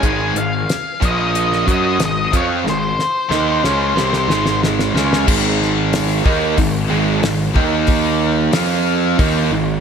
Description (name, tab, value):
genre	classic rock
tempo	92 BPM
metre	4/4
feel	straight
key	Ab major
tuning	A4 = 440 Hz
part	octave-fuzz lead guitar	melody	0.0-4.6 s	C5 to Ab5	-20 LUFS	left 2 dB	distortion, slapback echo, digital delay
part	biting overdriven guitar	riff	0.0-9.8 s	Ab2 to Gb4	-20 LUFS	right 12 dB	slapback echo
part	tight distorted guitar	riff	0.0-9.8 s	Ab2 to Gb4	-21 LUFS	left 12 dB	distortion, slapback echo
part	fuzz picked electric bass	bass	0.0-9.8 s	Ab1 to Gb2	-21 LUFS	left 1 dB	overdrive
part	damped 70s drum kit	drums	0.0-9.3 s	crash cymbal, hi-hat, kick drum, snare drum	-20 LUFS	left 1 dB	none
room	moderate lush hall reverb, RT60 2.1 s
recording	big arena sound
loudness	-14 LUFS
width	side -7 dB against mid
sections	0.0-5.3 A section; 5.3-9.8 B section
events	drum fill 2.7-5.3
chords	0.0 Ab5; 1.0 Bb5; 1.7 Ab; 5.3 Ab5; 7.5 Eb5; 8.5 F5; 9.2 Ab5